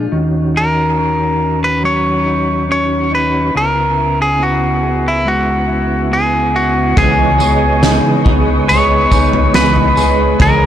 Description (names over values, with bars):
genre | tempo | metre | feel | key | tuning
dream pop | 70 BPM | 4/4 | straight | unclear | A4 = 444 Hz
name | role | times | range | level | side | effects
mellow tonewheel organ | sustained chords | 0.0-10.7 s | C#2 to D#6 | -20 LUFS | right 1 dB | chorus vibrato, slow rotary speaker
mellow electric guitar | arpeggios | 0.0-10.7 s | A#2 to A#4 | -18 LUFS | left 2 dB | lush chorus, tape echo
semi-hollow electric guitar | melody | 0.6-10.7 s | E4 to C#5 | -14 LUFS | equal | tape echo
semi-hollow electric guitar | accompaniment | 7.0-10.7 s | C#3 to G#4 | -17 LUFS | right 2 dB | tremolo, analog chorus
round analog bass | bass | 7.0-10.7 s | C#2 | -18 LUFS | right 1 dB | none
loose indie drum kit | drums | 7.0-10.6 s | kick drum, snare drum, tambourine, toms | -16 LUFS | equal | none
drifting glass-harmonics texture | texture | 8.1-10.7 s | F#4 to B4 | -24 LUFS | right 2 dB | chorus, built-in reverb, tape echo
room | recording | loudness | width
light reverb, studio reverb | blown-out, overdriven recording, overdrive | -11 LUFS | side -10 dB against mid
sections
0.0-7.0 A section; 7.0-10.7 B section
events
none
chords
0.1 D#m7; 3.5 C#m7; 7.0 C#m9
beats
| 0.11 0.97 1.83 2.69 | 3.54 4.40 5.26 6.11 | 6.97 7.83 8.69 9.54 | 10.40